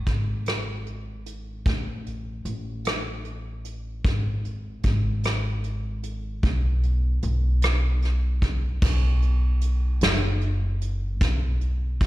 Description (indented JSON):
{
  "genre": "six-eight pop ballad",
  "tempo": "50 BPM (dotted quarters)",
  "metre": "6/8",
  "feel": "straight",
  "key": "unclear",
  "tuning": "A4 = 445 Hz",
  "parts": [
    { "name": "upright bass", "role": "bass", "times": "0.0-12.1 s", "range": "F#1 to B1", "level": "-24 LUFS", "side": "equal", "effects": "none" },
    { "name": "soft brush drum kit", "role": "drums", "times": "0.1-12.1 s", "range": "crash cymbal, hi-hat, kick drum, rim click, snare drum", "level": "-25 LUFS", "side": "equal", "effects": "none" }
  ],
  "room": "little or no reverb",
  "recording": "live gig heard through the venue's PA, recital hall reverb",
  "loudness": "-22 LUFS",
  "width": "side -16 dB against mid",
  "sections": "0.0-8.8 A section; 8.8-12.1 B section",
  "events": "none",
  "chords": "none",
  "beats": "0.46 | 1.66 2.85 | 4.05 5.24 | 6.43 7.63 | 8.82 10.02 | 11.21"
}